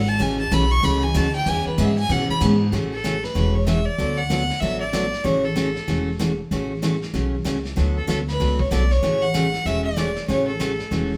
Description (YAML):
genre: country, western swing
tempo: 190 BPM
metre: 4/4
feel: swing 62% on 8ths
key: A major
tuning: A4 = 435 Hz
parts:
  - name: rich fiddle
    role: melody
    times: 0.0-11.1 s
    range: A4 to C#6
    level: -27 LUFS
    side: equal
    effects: none
  - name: upright bass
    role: bass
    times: 0.0-11.2 s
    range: E1 to B2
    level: -26 LUFS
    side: equal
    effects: none
  - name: vintage brush drum kit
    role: drums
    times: 0.1-11.2 s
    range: brushed snare drum, hi-hat, kick drum, ride cymbal, snare drum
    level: -34 LUFS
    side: equal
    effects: none
  - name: picked steel-string acoustic guitar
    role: accompaniment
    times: 0.2-11.1 s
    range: C#3 to A4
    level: -26 LUFS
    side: equal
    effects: none
room: wet studio reverb, RT60 0.8 s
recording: band playing live in one room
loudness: -22 LUFS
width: mono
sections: 0.0-2.7 A section; 2.7-11.2 B section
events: fiddle solo 0.0-2.7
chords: 0.2 A6; 1.5 E6; 2.7 A6; 4.0 D6; 5.2 A6; 7.8 D6; 9.0 A6